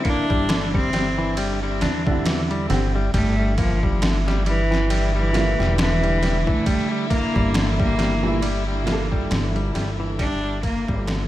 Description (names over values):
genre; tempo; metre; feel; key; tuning
trip hop; 68 BPM; 4/4; swing 57% on 16ths; G dorian; A4 = 440 Hz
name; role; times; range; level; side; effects
dark studio string section; sustained chords; 0.0-11.3 s; D3 to E4; -29 LUFS; left 1 dB; none
semi-hollow electric guitar; arpeggios; 0.0-11.2 s; D3 to D4; -28 LUFS; left 2 dB; vintage 12-bit sampler grit, tape echo
trip hop sampler-style drum kit; drums; 0.0-11.3 s; kick drum, ride cymbal, snare drum; -25 LUFS; equal; overdrive
clear cello; melody; 0.1-11.0 s; E3 to D4; -25 LUFS; equal; vintage 12-bit sampler grit, tape echo
upright bass; bass; 0.3-11.3 s; E1 to E2; -24 LUFS; equal; none
warm upright piano; accompaniment; 2.1-10.2 s; Bb2 to A4; -28 LUFS; right 3 dB; tremolo, vintage 12-bit sampler grit, tape echo
room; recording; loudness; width
small room reverb; none; -19 LUFS; side -14 dB against mid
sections
0.0-11.3 A section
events
fade-out 7.8-11.3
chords
0.0 Cadd9/G; 3.1 Gm69; 10.2 Cadd9/G (rootless)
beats
0.49 1.37 2.25 | 3.14 4.02 4.90 5.78 | 6.67 7.55 8.43 9.31 | 10.20 11.08